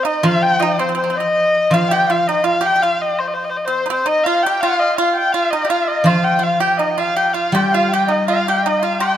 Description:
chinese traditional, Chinese chamber ensemble; 82 BPM; 2/4; straight; A4 = 435 Hz
dark erhu; melody; 0.0-9.2 s; C5 to G5; -18 LUFS; left 1 dB
bright reedy large dizi; second line; 0.0-9.2 s; C5 to G5; -22 LUFS; left 3 dB
pipa; second line; 0.0-9.2 s; C4 to G4; -20 LUFS; right 6 dB
guzheng; accompaniment; 0.2-9.2 s; F3 to G3; -21 LUFS; left 1 dB
woodblock; percussion; 0.2-9.2 s; -28 LUFS; left 3 dB
moderate concert hall reverb, RT60 2.2 s; -14 LUFS; side -10 dB against mid
0.0-1.7 A section; 1.7-9.2 B section

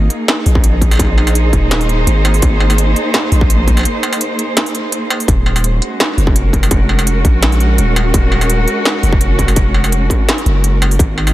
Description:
half-time drum and bass; 168 BPM; 4/4; swing 53% on 16ths, half-time; Eb dorian; A4 = 440 Hz
warm symphonic cello section; sustained chords; 0.0-11.3 s; Ab3 to C5; -18 LUFS; right 1 dB; vintage 12-bit sampler grit, sidechain pumping
long sustained 808-style bass; bass; 0.0-11.3 s; Eb1 to Bb1; -13 LUFS; equal
industrial drum kit; drums; 0.1-11.3 s; hi-hat, snare drum, struck metal; -17 LUFS; right 1 dB; overdrive
electronic kick drum; drums; 0.6-11.1 s; -14 LUFS; equal; distortion, overdrive
light reverb, digital ambience; dense, heavily limited modern master; -11 LUFS; side -15 dB against mid
0.0-11.3 A section
break 3.9-5.3
0.0 Ab; 5.3 Ebm

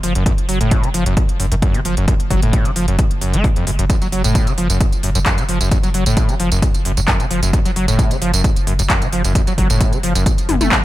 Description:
driving peak-time techno; 132 BPM; 4/4; straight; F# harmonic minor; A4 = 442 Hz
overdriven acid bass; riff; 0.0-10.8 s; E#2 to A3; -20 LUFS; equal; distortion, analog chorus, sidechain pumping, digital delay
saturated sub bass; bass; 0.0-10.7 s; F#1; -20 LUFS; equal; overdrive, sidechain pumping, low-pass filter
techno drum kit; drums; 0.0-10.8 s; handclaps, hi-hat, tambourine, toms; -21 LUFS; equal; overdrive, sidechain pumping on hats, sidechain pumping on perc, sidechain pumping on toms
electronic kick drum; drums; 0.3-10.8 s; -17 LUFS; equal
digital ambience; -14 LUFS; side -16 dB against mid
0.0-10.8 A section
drum fill 10.5-10.8
0.0 F#m

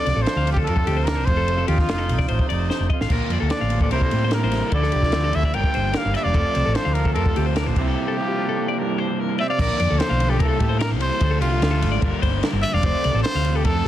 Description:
math rock and midwest emo; 148 BPM; 4/4; straight; F major; A4 = 440 Hz
warm trumpet; melody; 0.0-13.9 s; F4 to G5; -25 LUFS; equal
twangy electric guitar; accompaniment; 0.0-11.0 s; F2 to Bb4; -30 LUFS; right 8 dB
clean electric guitar; arpeggios; 0.0-13.9 s; F4 to F5; -29 LUFS; left 8 dB; digital delay
hollow-body short-scale fingered electric bass; bass; 0.1-13.8 s; E1 to A2; -22 LUFS; equal
compact cocktail drum kit; drums; 0.1-13.9 s; crash cymbal, kick drum, ride cymbal, snare drum; -24 LUFS; equal; soft clipping on snare
raw garage guitar; riff; 3.1-13.9 s; F2 to E4; -27 LUFS; right 1 dB; overdrive
little or no reverb; dense, heavily limited modern master; -18 LUFS; side -12 dB against mid
0.0-9.6 A section; 9.6-13.9 B section
drum fill 2.7-3.1; break 8.0-9.6
0.0 F6; 1.3 F7; 3.1 Bbmaj7; 3.9 C7; 4.7 Dm9; 5.5 Gm7; 6.3 F6; 7.8 C9sus4; 9.6 Bbmaj7; 10.4 C7; 11.2 Dm7; 12.0 Gm; 12.8 F6

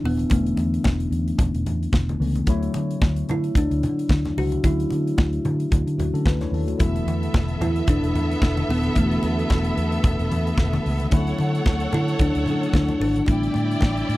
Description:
disco; 111 BPM; 4/4; swing 56% on 16ths; D major; A4 = 443 Hz
mellow tine electric piano; accompaniment; 0.0-14.2 s; D3 to C#5; -29 LUFS; left 3 dB; overdrive, wide subtle chorus
vintage muted fingered electric bass; bass; 0.0-14.2 s; Eb1 to D3; -24 LUFS; equal
kalimba; melody; 0.1-14.2 s; A3 to F#4; -26 LUFS; equal
modern studio drum kit; drums; 0.1-14.2 s; hi-hat, kick drum, snare drum; -20 LUFS; equal
congas; percussion; 0.2-13.9 s; -31 LUFS; left 1 dB
clear studio string section; second line; 6.8-14.2 s; B3 to G5; -28 LUFS; right 2 dB
little or no reverb; dry, close 1970s-style studio recording; -19 LUFS; side -18 dB against mid
0.0-14.2 A section
0.0 E7sus4; 2.5 Dmaj9; 6.8 E7sus4; 11.1 Dmaj9; 13.3 A9sus4

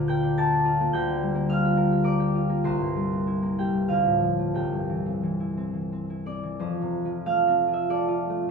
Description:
classical, solo harp piece; 85-107 BPM; 3/4; rubato; F major; A4 = 439 Hz
concert harp; solo; 0.0-8.5 s; C2 to A6; -22 LUFS; equal
light reverb; minimal, uncompressed stereo recording; -22 LUFS; side -5 dB against mid
0.0-6.6 A section; 6.6-8.5 B section
0.0 Bb/D; 2.7 C7; 3.9 Dm7; 4.6 C; 6.6 F

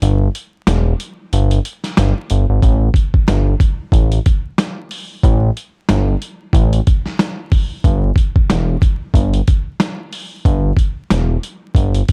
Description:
hip hop, boom-bap hip-hop; 92 BPM; 4/4; swing 58% on 16ths; A4 = 440 Hz
fat analog bass; bass; 0.0-12.0 s; E1 to A1; -16 LUFS; equal
boom bap sampler-style drum kit; drums; 0.0-12.1 s; hi-hat, kick drum, snare drum; -17 LUFS; equal
little or no reverb; dark, warm production, vinyl crackle; -16 LUFS; mono
0.0-2.6 A section; 2.6-12.1 B section
kick muted 1.3-2.6

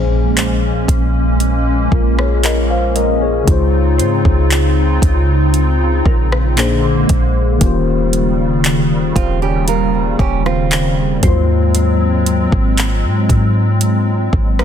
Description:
contemporary R&B; 58 BPM; 4/4; straight; Bb minor; A4 = 440 Hz
mellow tine electric piano; accompaniment; 0.0-14.6 s; Ab2 to F5; -19 LUFS; left 5 dB; lush chorus
hollow soft pad; sustained chords; 0.0-14.6 s; Db3 to F4; -18 LUFS; right 1 dB; ensemble chorus
soft 808-style bass; bass; 0.0-14.6 s; Eb1 to Ab2; -16 LUFS; equal
impact; sound effects; 0.0-3.5 s; -29 LUFS; left 1 dB
smooth R&B drum kit; drums; 0.4-14.6 s; handclaps, hi-hat, kick drum, rim click; -18 LUFS; equal
glassy wavetable pluck; texture; 0.4-14.1 s; Bb4 to C5; -31 LUFS; right 3 dB
nylon-string guitar; arpeggios; 9.2-14.6 s; Bb3 to Bb4; -20 LUFS; right 10 dB; digital delay
little or no reverb; dense, heavily limited modern master; -12 LUFS; side -8 dB against mid
0.0-14.6 A section
impact 0.0-3.5
0.0 Bbm7; 6.6 Bb9; 7.6 Eb13; 11.2 Ab13

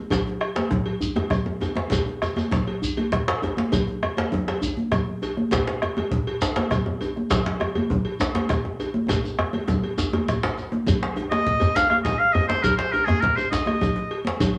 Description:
west african traditional, West African drum ensemble; 134 BPM (dotted quarters); 12/8; straight; A4 = 440 Hz
bombo; percussion; 0.1-14.5 s; -31 LUFS; equal
congas; percussion; 0.1-14.5 s; -30 LUFS; equal
cowbell; percussion; 0.1-14.5 s; -33 LUFS; equal
djembe; percussion; 0.1-14.5 s; -34 LUFS; equal
djembe; percussion; 0.1-14.5 s; -29 LUFS; equal
shekere; percussion; 0.1-14.5 s; -37 LUFS; equal
bright oboe; melody; 11.3-14.2 s; Ab4 to F5; -24 LUFS; equal
wet club reverb, RT60 0.6 s; faint mains hum; -24 LUFS; mono
0.0-10.9 A section; 10.9-14.6 B section
speeding up 0.0-14.6; drum fill 9.1-10.9

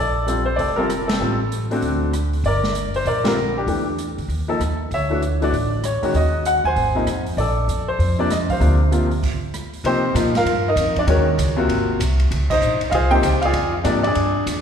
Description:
jazz piano trio; 195 BPM; 4/4; swing 63% on 8ths; Bb major; A4 = 440 Hz
bright upright piano; melody; 0.0-14.5 s; C3 to Ab5; -20 LUFS; left 1 dB
upright bass; bass; 0.0-14.6 s; F1 to C3; -21 LUFS; equal
open jazz drum kit; drums; 0.3-14.6 s; crash cymbal, hi-hat, kick drum, ride cymbal, rim click, snare drum; -30 LUFS; right 2 dB
wet scoring stage reverb, RT60 1.8 s; recorded in a church or concert hall; -17 LUFS; side -7 dB against mid
0.0-9.8 A section; 9.8-14.6 B section
band accent 1.1, 3.2, 12.5; stop 9.2-9.8
0.0 Bbmaj7; 1.2 Am; 1.8 D7; 2.4 Gm; 3.7 Em7; 4.3 N.C.; 4.9 Dmaj7; 6.1 Ebm; 6.8 Ab; 7.4 Bbmaj7; 8.6 Dm7; 9.2 N.C.; 9.8 Cm7; 11.1 Ebm7; 11.7 Ab7; 12.3 Dbmaj7; 13.5 Bb7 (rootless)

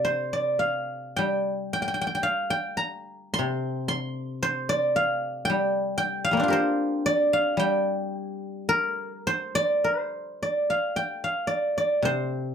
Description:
chinese traditional, Chinese solo plucked strings; 52-58 BPM; 2/4; rubato; G yu mode; A4 = 440 Hz
guzheng; solo; 0.0-12.5 s; C3 to C6; -24 LUFS; equal
light reverb; close, detailed microphones; -24 LUFS; side -7 dB against mid
0.0-9.8 A section; 9.8-12.5 B section

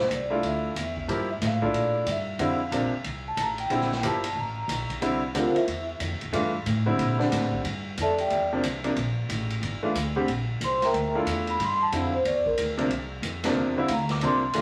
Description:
modal jazz; 183 BPM; 4/4; swing 63% on 8ths; G dorian; A4 = 439 Hz
vibraphone with soft mallets; melody; 0.0-5.9, 8.0-8.5, 10.6-14.5 s; E4 to D6; -29 LUFS; equal
upright bass; bass; 0.0-14.6 s; G1 to Bb2; -34 LUFS; equal
swinging big-band drum kit; drums; 0.1-14.6 s; hi-hat, kick drum, ride cymbal, snare drum; -36 LUFS; equal
bright upright piano; accompaniment; 0.3-14.6 s; C3 to G4; -30 LUFS; equal
wet club reverb, RT60 0.6 s; vinyl crackle; -27 LUFS; mono
0.0-14.6 A section
vibraphone solo 0.0-14.6
0.0 Gm69; 11.6 Bbsus2

